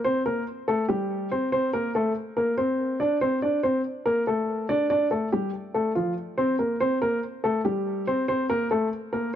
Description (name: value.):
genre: hip hop.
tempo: 142 BPM.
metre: 4/4.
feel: half-time.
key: unclear.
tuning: A4 = 440 Hz.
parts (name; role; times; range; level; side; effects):
dark baby grand piano; solo; 0.0-9.3 s; F3 to D5; -23 LUFS; equal; low-pass filter.
room: moderate recital hall reverb, RT60 1.5 s, small room ambience.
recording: dry, gritty hardware recording.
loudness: -23 LUFS.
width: side -10 dB against mid.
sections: 0.0-9.4 A section.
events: none.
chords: 0.0 C5; 3.0 D5; 6.4 C5.